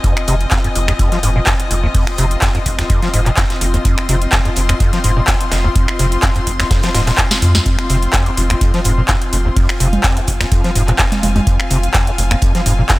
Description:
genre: acid house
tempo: 126 BPM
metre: 4/4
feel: swing 53% on 16ths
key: unclear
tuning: A4 = 440 Hz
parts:
  - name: overdriven acid bass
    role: riff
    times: 0.0-13.0 s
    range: F1 to F3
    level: -19 LUFS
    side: equal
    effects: ensemble chorus, vintage 12-bit sampler grit, sidechain pumping, tape echo
  - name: booming analog drum machine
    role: drums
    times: 0.0-13.0 s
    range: congas, finger snaps, handclaps, hi-hat, snare drum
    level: -19 LUFS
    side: equal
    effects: none
  - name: electronic kick drum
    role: drums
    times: 0.0-13.0 s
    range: none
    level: -16 LUFS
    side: equal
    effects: none
  - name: modern studio drum kit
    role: drums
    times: 0.0-13.0 s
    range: hi-hat, snare drum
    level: -27 LUFS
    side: right 1 dB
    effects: sidechain pumping on hats, high-pass filter on hats, high-pass filter on snare, high-pass filter on room
  - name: muted studio string section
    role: texture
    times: 0.0-13.0 s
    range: C4 to C6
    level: -22 LUFS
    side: left 2 dB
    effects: sidechain pumping
  - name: warm sub bass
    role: bass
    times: 0.3-12.8 s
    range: Eb1 to F2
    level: -17 LUFS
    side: equal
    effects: sidechain pumping
room: light reverb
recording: none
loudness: -12 LUFS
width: side -19 dB against mid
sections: 0.0-13.0 A section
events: filter sweep on acid bass 0.0-13.0; drum fill 7.3-7.7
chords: 0.0 Fm7

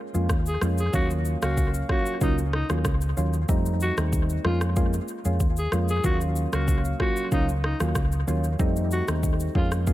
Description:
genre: afrobeats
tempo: 94 BPM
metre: 4/4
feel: straight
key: Eb minor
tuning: A4 = 440 Hz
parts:
  - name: soft electric-piano-like synth keys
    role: accompaniment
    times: 0.1-9.9 s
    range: Gb3 to F5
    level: -29 LUFS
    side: right 1 dB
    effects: chorus, dub echo
  - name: hollow-body short-scale fingered electric bass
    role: bass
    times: 0.1-9.9 s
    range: Db2 to F2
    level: -25 LUFS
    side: equal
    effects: none
  - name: afro-pop drum kit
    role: drums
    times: 0.1-9.9 s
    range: kick drum, rim click, shaker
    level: -27 LUFS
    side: equal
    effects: dub echo
  - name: growling alto saxophone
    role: melody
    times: 0.5-9.7 s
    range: Eb4 to Ab4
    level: -31 LUFS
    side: left 1 dB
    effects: dub echo
room: little or no reverb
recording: echo-heavy mix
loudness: -22 LUFS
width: side -15 dB against mid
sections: 0.0-9.9 A section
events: none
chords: 0.0 Bbm7/F; 0.9 Ebm7; 3.5 F7; 4.4 Bbm7/F; 6.0 Ebm7; 8.6 F7

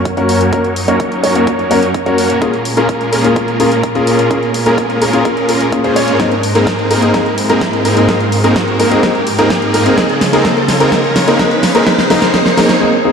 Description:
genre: EDM, festival progressive house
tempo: 127 BPM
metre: 4/4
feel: straight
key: Db major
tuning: A4 = 440 Hz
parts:
  - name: muted studio string section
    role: sustained chords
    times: 0.0-12.8 s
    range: Gb2 to Db5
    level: -19 LUFS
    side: right 1 dB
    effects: sidechain pumping
  - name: riser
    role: sound effects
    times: 0.8-12.8 s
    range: none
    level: -23 LUFS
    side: right 1 dB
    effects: none
  - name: big-room dance drum kit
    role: drums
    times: 0.1-12.8 s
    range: hi-hat, snare drum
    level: -18 LUFS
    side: right 1 dB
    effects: none
  - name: electronic kick drum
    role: drums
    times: 0.1-12.4 s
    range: none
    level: -23 LUFS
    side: equal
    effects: high-pass filter on kick
  - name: dark grand piano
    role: accompaniment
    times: 0.2-13.1 s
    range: Bb3 to Bb4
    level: -16 LUFS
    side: left 2 dB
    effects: sidechain pumping, tape echo
  - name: dark baby grand piano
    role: arpeggios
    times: 0.2-12.7 s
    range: Bb4 to Db5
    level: -18 LUFS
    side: equal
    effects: sidechain pumping, low-pass filter, tape echo
  - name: supersaw chords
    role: riff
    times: 0.2-12.7 s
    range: Bb3 to Db5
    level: -16 LUFS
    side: right 1 dB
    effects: sidechain pumping, low-pass filter, tape echo
room: wet lush hall reverb, RT60 2.1 s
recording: dark, warm production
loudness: -10 LUFS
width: side -6 dB against mid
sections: 0.0-13.1 A section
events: build-up 0.0-13.1; filter sweep on grand piano 0.0-13.1; riser 0.8-12.8; drum fill 6.2-12.8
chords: 0.0 Gb; 2.4 Bbm7; 6.2 Abadd9; 10.0 Db

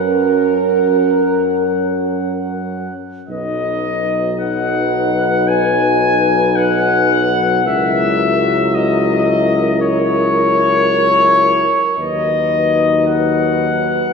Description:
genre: classical, hymn-like piece for brass band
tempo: 55 BPM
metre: 4/4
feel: rubato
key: B major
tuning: A4 = 440 Hz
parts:
  - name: dark trumpet section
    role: melody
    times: 0.0-14.1 s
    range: C#5 to G#5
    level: -16 LUFS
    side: left 3 dB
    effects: none
  - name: mellow French horn section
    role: second line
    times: 0.0-14.1 s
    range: A#4 to B4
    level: -19 LUFS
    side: right 1 dB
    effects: none
  - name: mellow trombone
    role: accompaniment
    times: 0.0-14.1 s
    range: F#3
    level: -24 LUFS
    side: right 1 dB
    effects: none
  - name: warm euphonium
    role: accompaniment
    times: 0.0-14.1 s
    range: C#4 to E4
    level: -22 LUFS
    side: left 1 dB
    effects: none
  - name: warm tuba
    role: bass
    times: 0.0-14.1 s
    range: B1 to F#2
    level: -21 LUFS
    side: right 1 dB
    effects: none
room: wet church reverb, RT60 3.2 s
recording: none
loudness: -13 LUFS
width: side -5 dB against mid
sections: 0.0-3.3 A section; 3.3-14.1 B section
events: none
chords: 0.0 F#; 3.3 B; 7.7 F#7/C#; 12.0 B/D#

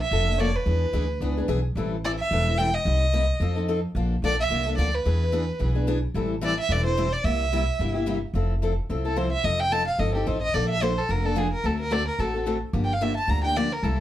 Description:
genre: acoustic string swing (jazz manouche)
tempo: 219 BPM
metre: 4/4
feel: swing 57% on 8ths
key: F major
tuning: A4 = 441 Hz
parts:
  - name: warm violin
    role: melody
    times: 0.0-14.0 s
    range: G4 to Bb5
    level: -26 LUFS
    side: right 2 dB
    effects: none
  - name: picked steel-string acoustic guitar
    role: accompaniment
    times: 0.1-14.0 s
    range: C3 to A4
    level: -28 LUFS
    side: left 3 dB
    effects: none
  - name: upright bass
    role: bass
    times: 0.1-14.0 s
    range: E1 to F2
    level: -26 LUFS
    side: equal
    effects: none
room: moderate studio reverb, RT60 0.5 s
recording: heard from further back in the room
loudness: -22 LUFS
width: side -12 dB against mid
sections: 0.0-8.3 A section; 8.3-14.0 B section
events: violin solo 8.3-14.0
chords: 0.0 Bbmaj7; 0.7 E7; 1.8 Am7; 2.9 Cm7; 3.4 F7; 4.0 Bbmaj7; 5.1 E7; 6.1 Am7; 7.2 C7; 8.3 Fmaj7; 9.4 F7; 10.5 Bbmaj7; 11.6 D7; 12.7 Gm7

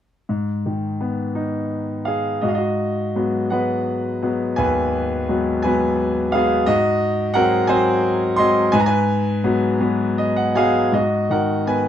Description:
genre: classical, lyrical solo piano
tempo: 53-59 BPM (dotted quarters)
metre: 6/8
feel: rubato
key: G# dorian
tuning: A4 = 440 Hz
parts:
  - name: bright concert grand piano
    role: solo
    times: 0.3-11.9 s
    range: D#2 to B#5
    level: -17 LUFS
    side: equal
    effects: none
room: light reverb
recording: dark, warm production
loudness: -17 LUFS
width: side -10 dB against mid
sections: 0.3-2.4 A section; 2.4-10.9 B section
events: grand piano fill 9.8-10.9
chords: 0.3 G#m; 2.4 G#m7; 6.7 G#7; 8.7 G#m7

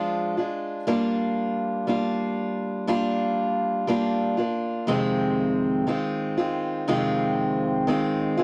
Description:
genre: pop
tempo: 60 BPM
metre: 4/4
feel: straight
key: unclear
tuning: A4 = 438 Hz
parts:
  - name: picked acoustic archtop guitar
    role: solo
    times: 0.0-8.4 s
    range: F2 to F4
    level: -25 LUFS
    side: equal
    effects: none
room: moderate booth ambience, RT60 0.2 s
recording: dry, close 1970s-style studio recording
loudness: -25 LUFS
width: mono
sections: 0.9-8.4 A section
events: none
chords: 0.0 Ddim; 0.9 Gm7; 4.9 Fm7

